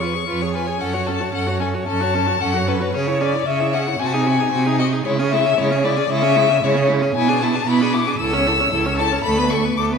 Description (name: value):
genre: quick classical-period movement for string quartet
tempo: 114 BPM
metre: 4/4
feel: rubato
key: unclear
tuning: A4 = 441 Hz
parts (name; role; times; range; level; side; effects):
- clear violin; melody; 0.0-9.8 s; B4 to E6; -20 LUFS; left 6 dB; none
- clear violin; second line; 0.0-10.0 s; E4 to C#5; -25 LUFS; left 3 dB; none
- rich viola; accompaniment; 0.0-10.0 s; G#3 to G#4; -24 LUFS; right 2 dB; none
- rich cello; bass; 0.0-10.0 s; C#2 to C#3; -22 LUFS; right 5 dB; none
room: moderate scoring stage reverb, RT60 1.6 s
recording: minimal, uncompressed stereo recording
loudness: -16 LUFS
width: side -6 dB against mid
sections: 0.0-10.0 A section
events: none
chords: 0.0 C#7/E#; 0.8 F#m; 2.9 C#m; 4.0 G#7/B#; 5.1 C#m; 7.2 E7/B; 8.2 A/C#; 9.2 Bm7/D